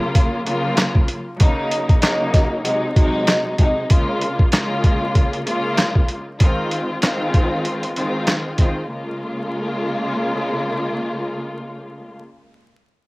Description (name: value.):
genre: hip hop, boom-bap hip-hop.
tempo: 96 BPM.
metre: 4/4.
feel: swing 57% on 16ths.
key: Bb minor.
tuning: A4 = 440 Hz.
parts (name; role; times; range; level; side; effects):
warm studio string section; accompaniment; 0.0-12.2 s; C3 to F4; -21 LUFS; equal; cassette tape, high-pass filter, low-pass filter.
boom bap sampler-style drum kit; drums; 0.1-8.8 s; handclaps, hi-hat, kick drum, snare drum; -16 LUFS; equal; cassette tape.
room: light reverb, small room ambience.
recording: home recording on cassette, vinyl crackle.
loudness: -17 LUFS.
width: side -23 dB against mid.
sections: 0.0-3.9 A section; 3.9-8.9 B section; 8.9-11.4 C section.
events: none.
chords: 0.0 Gbmaj7; 1.4 Ebm7; 2.7 Ab7; 3.9 Bbm7; 6.4 Fm7; 8.9 Bbm7.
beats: 0.15 0.78 | 1.40 2.03 2.65 3.28 | 3.90 4.53 5.15 5.78 | 6.40 7.03 7.65 8.28 | 8.90 9.53 10.15 10.78.